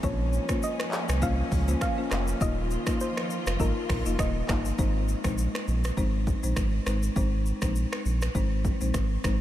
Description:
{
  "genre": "afrobeats",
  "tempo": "101 BPM",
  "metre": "4/4",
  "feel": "swing 55% on 16ths",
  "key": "Ab major",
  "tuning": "A4 = 440 Hz",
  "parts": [
    { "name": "soft round pluck", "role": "melody", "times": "0.0-4.6 s", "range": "Bb4 to F5", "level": "-36 LUFS", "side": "equal", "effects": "chorus, tape echo" },
    { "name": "folk marimba with medium mallets", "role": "accompaniment", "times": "0.0-9.4 s", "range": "Ab3 to Eb5", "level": "-32 LUFS", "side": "left 3 dB", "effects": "none" },
    { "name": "warm studio string section", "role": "sustained chords", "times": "0.0-4.8 s", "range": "Eb3 to F4", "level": "-37 LUFS", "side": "left 1 dB", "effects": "none" },
    { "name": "saturated sub bass", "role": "bass", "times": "0.0-9.4 s", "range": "Eb1 to Db2", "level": "-27 LUFS", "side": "equal", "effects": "none" },
    { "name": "deep house drum kit", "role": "drums", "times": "0.0-9.4 s", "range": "finger snaps, handclaps, hi-hat, kick drum, rim click, shaker", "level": "-30 LUFS", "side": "equal", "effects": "none" }
  ],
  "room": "light reverb, digital ambience",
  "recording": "none",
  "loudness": "-25 LUFS",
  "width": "side -13 dB against mid",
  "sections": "0.0-4.8 A section; 4.8-9.4 B section",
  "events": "none",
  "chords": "0.0 Bbmadd9; 2.4 Ebsus2; 4.8 Ab"
}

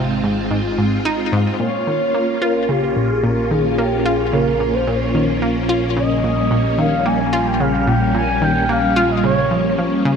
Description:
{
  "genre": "ambient, sequencer-driven space music",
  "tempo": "110 BPM",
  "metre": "4/4",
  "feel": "straight",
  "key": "Bb dorian",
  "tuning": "A4 = 440 Hz",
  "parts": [
    { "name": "phased string machine", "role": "sustained chords", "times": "0.0-10.2 s", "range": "G3 to F4", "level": "-20 LUFS", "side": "equal", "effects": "ensemble chorus, phaser" },
    { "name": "analog pluck", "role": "riff", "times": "0.0-10.2 s", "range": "Ab2 to F4", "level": "-20 LUFS", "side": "equal", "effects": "chorus, ping-pong delay" },
    { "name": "fat analog bass", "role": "bass", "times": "0.0-10.2 s", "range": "Ab1 to Bb1", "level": "-25 LUFS", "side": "equal", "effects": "none" },
    { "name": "expressive portamento lead", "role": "melody", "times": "1.6-9.7 s", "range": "G4 to Ab5", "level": "-20 LUFS", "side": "equal", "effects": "wide subtle chorus, ping-pong delay" }
  ],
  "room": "wet plate reverb, RT60 2.5 s",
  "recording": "echo-heavy mix",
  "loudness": "-15 LUFS",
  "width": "side -6 dB against mid",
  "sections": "0.0-10.2 A section",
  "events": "none",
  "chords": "0.0 Ab; 1.6 Bbm"
}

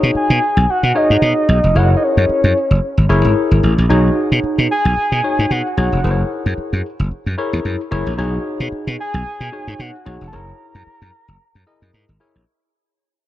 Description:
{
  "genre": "early-eighties boogie funk",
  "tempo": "112 BPM",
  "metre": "4/4",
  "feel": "swing 56% on 16ths",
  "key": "B major",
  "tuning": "A4 = 437 Hz",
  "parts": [
    { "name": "barky tine electric piano", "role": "accompaniment", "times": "0.0-12.4 s", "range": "D#4 to D#5", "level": "-20 LUFS", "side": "left 2 dB", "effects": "phaser" },
    { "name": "slap bass", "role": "bass", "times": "0.0-12.4 s", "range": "E#1 to B2", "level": "-15 LUFS", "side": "equal", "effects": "none" },
    { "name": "soft octave-layered synth lead", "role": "melody", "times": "0.2-11.9 s", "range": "C#5 to A#5", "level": "-19 LUFS", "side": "equal", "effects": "chorus, tremolo" }
  ],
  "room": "moderate church reverb, RT60 2.8 s",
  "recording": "dreamy mix soaked in reverb",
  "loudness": "-14 LUFS",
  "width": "side -14 dB against mid",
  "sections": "0.0-3.9 A section; 3.9-12.5 B section",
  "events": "fade-out 3.9-12.5",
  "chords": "0.0 B69; 1.8 F#9; 3.9 B69; 6.0 F#9; 8.2 B69; 10.3 F#9"
}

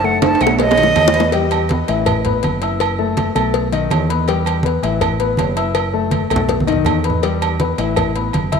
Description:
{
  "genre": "latin, salsa",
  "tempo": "163 BPM",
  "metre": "4/4",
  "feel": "straight",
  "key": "E harmonic minor",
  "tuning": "A4 = 438 Hz",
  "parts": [
    { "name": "bright silver concert flute", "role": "melody", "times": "0.0-1.3 s", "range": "D#5 to A5", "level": "-17 LUFS", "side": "right 3 dB", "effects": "none" },
    { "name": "dark grand piano", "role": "accompaniment", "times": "0.0-8.6 s", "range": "D#3 to E6", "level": "-20 LUFS", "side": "left 8 dB", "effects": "none" },
    { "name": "fingered electric bass", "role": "bass", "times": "0.0-8.6 s", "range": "F#1 to E2", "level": "-21 LUFS", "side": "right 2 dB", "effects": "none" },
    { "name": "congas", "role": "percussion", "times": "0.0-8.6 s", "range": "none", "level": "-23 LUFS", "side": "right 2 dB", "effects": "none" },
    { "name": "cowbell and bongos", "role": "percussion", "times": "0.2-8.6 s", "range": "none", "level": "-23 LUFS", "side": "left 9 dB", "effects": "none" },
    { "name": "timbales and agogo bells", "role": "percussion", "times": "0.2-8.6 s", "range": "none", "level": "-22 LUFS", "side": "right 14 dB", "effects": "none" }
  ],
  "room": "moderate plate reverb, RT60 3.2 s",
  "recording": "1960s-style stereo with parts hard left and right",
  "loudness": "-14 LUFS",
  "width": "side -6 dB against mid",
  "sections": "0.0-1.3 A section; 1.3-8.6 B section",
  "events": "drum fill 0.0-1.3, 6.1-7.2; flute solo 0.0-1.3",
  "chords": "0.0 F#m; 0.6 B7; 1.3 Em; 2.1 F#m7; 3.5 B7; 4.3 Em; 5.0 F#m7; 6.5 B7; 7.2 Em; 8.0 F#m7"
}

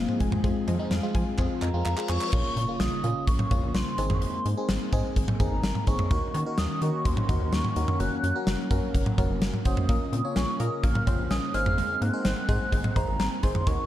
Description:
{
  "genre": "synth-pop",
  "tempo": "127 BPM",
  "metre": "4/4",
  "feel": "straight",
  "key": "Bb minor",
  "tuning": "A4 = 441 Hz",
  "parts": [
    { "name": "hollow clarinet-like synth lead", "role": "melody", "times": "0.0-13.9 s", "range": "Ab3 to Gb6", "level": "-32 LUFS", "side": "equal", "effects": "chorus" },
    { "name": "FM electric piano", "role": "accompaniment", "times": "0.0-13.9 s", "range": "Ab3 to Db5", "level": "-33 LUFS", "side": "equal", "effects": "chorus, phaser" },
    { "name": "warm analog pad", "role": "sustained chords", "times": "0.0-13.9 s", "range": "Db3 to Ab4", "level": "-35 LUFS", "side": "left 1 dB", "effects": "chorus" },
    { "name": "analog pluck", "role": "arpeggios", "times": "0.0-2.3, 9.9-13.8 s", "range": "Gb3 to Ab5", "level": "-38 LUFS", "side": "left 1 dB", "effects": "chorus, phaser, tape echo" },
    { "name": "rubbery square bass", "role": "bass", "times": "0.0-13.8 s", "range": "F1 to F3", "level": "-29 LUFS", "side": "equal", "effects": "none" },
    { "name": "gated 80s drum kit", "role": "drums", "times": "0.1-13.8 s", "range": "cowbell, crash cymbal, handclaps, hi-hat, kick drum, snare drum, toms", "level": "-27 LUFS", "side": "equal", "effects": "none" },
    { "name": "reverse cymbal and impact", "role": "sound effects", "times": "1.8-4.2 s", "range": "none", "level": "-40 LUFS", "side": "left 3 dB", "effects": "none" }
  ],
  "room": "light reverb, small room ambience",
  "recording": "dark, warm production",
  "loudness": "-24 LUFS",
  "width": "side -13 dB against mid",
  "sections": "0.0-2.3 A section; 2.3-13.9 B section",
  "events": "drum fill 1.4-2.3; reverse cymbal 1.8-2.3; impact 2.3-4.2",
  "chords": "0.0 Fm7; 2.3 Bbm; 4.0 Abadd9; 6.1 Ebm7; 8.0 Gb; 9.9 Bbmadd9; 11.5 Abadd9"
}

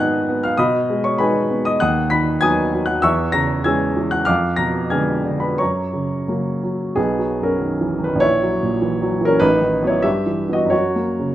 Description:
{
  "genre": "classical, romantic character piece for solo piano",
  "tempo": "85-102 BPM",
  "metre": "2/4",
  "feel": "rubato",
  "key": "B major",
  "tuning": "A4 = 440 Hz",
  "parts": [
    { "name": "warm baby grand piano", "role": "solo", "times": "0.0-11.3 s", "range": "A1 to B6", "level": "-16 LUFS", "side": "equal", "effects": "none" }
  ],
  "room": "moderate large studio reverb, RT60 0.9 s",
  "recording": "none",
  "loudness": "-16 LUFS",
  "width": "side -13 dB against mid",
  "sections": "0.0-7.0 A section; 7.0-11.3 B section",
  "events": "none",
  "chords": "0.0 G#m; 0.6 G#m/B; 1.8 B/D#; 3.0 C#m/E; 4.3 Fdim7; 5.6 F#; 7.0 B; 8.2 F#7/A#; 9.4 B7/A; 10.0 Em/G; 10.7 F#"
}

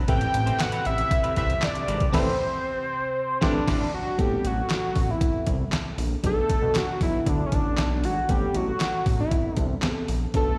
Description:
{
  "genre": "early-eighties boogie funk",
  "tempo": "117 BPM",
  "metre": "4/4",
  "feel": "straight",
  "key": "A dorian",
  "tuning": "A4 = 440 Hz",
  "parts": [
    { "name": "FM electric piano", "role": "accompaniment", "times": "0.0-10.6 s", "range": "F#3 to E5", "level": "-35 LUFS", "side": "equal", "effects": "chorus, tremolo, slapback echo" },
    { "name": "warm analog pad", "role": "sustained chords", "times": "0.0-4.1 s", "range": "C3 to G4", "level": "-40 LUFS", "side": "equal", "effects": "chorus" },
    { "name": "electric guitar through a small old amp", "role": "riff", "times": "0.0-3.9 s", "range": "G3 to C5", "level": "-39 LUFS", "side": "equal", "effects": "analog chorus, slapback echo" },
    { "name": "fat analog lead", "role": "melody", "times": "0.1-10.6 s", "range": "C#4 to G5", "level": "-28 LUFS", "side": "equal", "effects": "phaser, slapback echo" },
    { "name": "fat analog bass", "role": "bass", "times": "0.1-10.5 s", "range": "G#1 to B2", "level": "-29 LUFS", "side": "equal", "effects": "none" },
    { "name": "detuned 8-bit digital drum machine", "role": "drums", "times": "0.1-10.5 s", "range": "crash cymbal, handclaps, hi-hat, kick drum, snare drum", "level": "-29 LUFS", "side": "equal", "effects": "overdrive" }
  ],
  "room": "little or no reverb",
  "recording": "live gig heard through the venue's PA, recital hall reverb",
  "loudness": "-25 LUFS",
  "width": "mono",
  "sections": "0.0-4.2 A section; 4.2-10.6 B section",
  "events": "band accent 2.1-4.2",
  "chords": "0.1 Am9; 6.2 Bm7; 8.3 Am9"
}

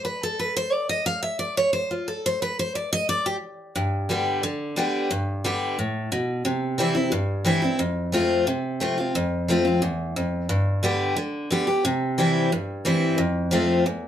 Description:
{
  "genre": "bluegrass",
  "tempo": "178 BPM",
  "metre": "4/4",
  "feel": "straight",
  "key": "G mixolydian",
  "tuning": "A4 = 440 Hz",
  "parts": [
    { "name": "picked steel-string acoustic guitar", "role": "solo", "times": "0.0-14.1 s", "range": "E2 to F5", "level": "-22 LUFS", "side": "equal", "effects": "none" }
  ],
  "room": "moderate studio reverb, RT60 0.5 s",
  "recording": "band playing live in one room",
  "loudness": "-22 LUFS",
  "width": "side -10 dB against mid",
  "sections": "0.0-3.8 A section; 3.8-14.1 B section",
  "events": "steel-string acoustic guitar solo 0.0-3.8",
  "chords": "0.0 N.C.; 3.8 G; 6.5 C; 7.8 F; 10.5 G; 11.8 C; 13.2 F"
}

